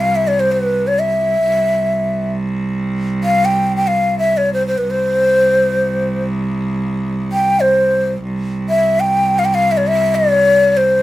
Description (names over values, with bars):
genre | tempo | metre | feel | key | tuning
Persian modal ensemble | free time | none | none | C dastgah chahargah | A4 = 438 Hz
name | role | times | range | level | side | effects
breathy ney | melody | 0.0-11.0 s | B4 to G5 | -13 LUFS | left 1 dB | none
clear cello | drone | 0.0-11.0 s | C2 | -20 LUFS | right 2 dB | none
room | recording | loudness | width
light reverb | minimal, uncompressed stereo recording | -13 LUFS | side -15 dB against mid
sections
0.0-8.2 A section; 8.2-11.0 A section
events
none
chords
none